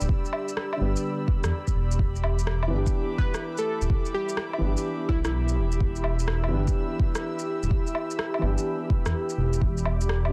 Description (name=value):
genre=future garage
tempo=126 BPM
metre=4/4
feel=swing 66% on 16ths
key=E minor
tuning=A4 = 440 Hz
part: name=felt-muted upright piano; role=accompaniment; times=0.0-10.3 s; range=D3 to G4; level=-35 LUFS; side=equal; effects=sidechain pumping, analog delay
part: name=airy breathy pad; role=sustained chords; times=0.0-10.3 s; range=G4 to E6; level=-36 LUFS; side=equal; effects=chorus, sidechain pumping
part: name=dark detuned saw bass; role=bass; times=0.0-10.3 s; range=D1 to E2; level=-28 LUFS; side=equal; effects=sidechain pumping
part: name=electronic shaker, woodblock and rim click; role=drums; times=0.0-10.3 s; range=none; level=-35 LUFS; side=equal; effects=soft clipping on snare
part: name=electronic kick drum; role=drums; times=0.1-9.7 s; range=none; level=-28 LUFS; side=equal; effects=none
part: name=plucky unison lead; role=melody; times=3.2-5.3 s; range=E4 to B4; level=-35 LUFS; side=equal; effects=analog delay
room=light reverb, digital ambience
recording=dense, heavily limited modern master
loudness=-26 LUFS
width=mono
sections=0.0-10.3 A section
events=none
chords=0.0 Em7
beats=| 0.09 0.57 1.04 1.52 | 2.00 2.47 2.95 3.43 | 3.90 4.38 4.86 5.33 | 5.81 6.28 6.76 7.24 | 7.71 8.19 8.66 9.14 | 9.62 10.09